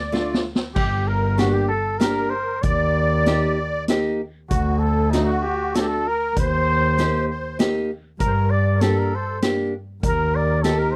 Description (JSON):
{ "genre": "klezmer", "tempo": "97 BPM", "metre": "3/4", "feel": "straight", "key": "G harmonic minor", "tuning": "A4 = 440 Hz", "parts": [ { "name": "breathy cornet", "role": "melody", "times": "0.0-11.0 s", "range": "Eb4 to D5", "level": "-27 LUFS", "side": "equal", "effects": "none" }, { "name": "musette accordion", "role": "second line", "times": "0.0-11.0 s", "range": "Eb4 to D5", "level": "-30 LUFS", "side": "equal", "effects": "none" }, { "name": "nylon-string guitar", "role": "accompaniment", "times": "0.1-10.9 s", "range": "A3 to G4", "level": "-25 LUFS", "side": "equal", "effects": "none" }, { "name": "street-band drum kit", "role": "drums", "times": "0.1-10.8 s", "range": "crash cymbal, hi-hat, kick drum, snare drum", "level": "-27 LUFS", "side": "equal", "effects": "none" }, { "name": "warm double bass", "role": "bass", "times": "0.8-11.0 s", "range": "G1 to G2", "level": "-26 LUFS", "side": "equal", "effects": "none" } ], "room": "little or no reverb", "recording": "dry, close 1970s-style studio recording", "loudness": "-21 LUFS", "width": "mono", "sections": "0.8-11.0 A section", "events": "speeding up 0.0-11.0; drum fill 0.0-0.8", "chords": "0.0 Dm; 0.8 Gm; 2.6 Eb; 4.5 D; 6.4 Eb; 8.2 Gm; 10.0 Eb", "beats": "0.13 | 0.76 1.39 2.02 | 2.64 3.27 3.89 | 4.51 5.13 5.75 | 6.37 6.98 7.59 | 8.20 8.81 9.42 | 10.03 10.63" }